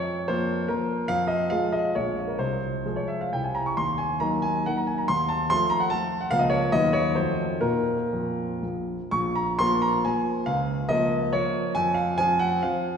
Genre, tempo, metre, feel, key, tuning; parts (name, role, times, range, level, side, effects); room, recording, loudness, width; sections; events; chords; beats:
classical, romantic triple-time dance for piano with dotted rhythms; 115-157 BPM; 3/4; rubato; F minor, Bb minor from 3.8 s; A4 = 444 Hz
warm concert grand piano; solo; 0.0-13.0 s; Bb1 to Db6; -23 LUFS; equal
wet concert hall reverb, RT60 2.5 s; recorded in a church or concert hall; -23 LUFS; side -7 dB against mid
0.0-9.1 A section; 9.1-13.0 B section
0.0 Bbm/F; 1.1 Fm; 1.9 Bbm7; 2.4 Fm/C; 3.3 C; 3.8 Ebmadd11; 5.1 F7/Eb; 6.3 Bbm/Db; 6.7 B/D#; 7.2 F7b9; 7.6 Bb5; 10.5 Bbm/Db; 11.8 F5
0.29 0.69 | 1.08 1.50 1.95 | 2.38 2.85 3.32 | 3.77 4.21 4.68 | 5.10 5.50 5.92 | 6.31 6.72 7.15 | 7.61 8.12 8.62 | 9.12 9.59 10.05 | 10.47 10.90 11.35 | 11.76 12.19 12.63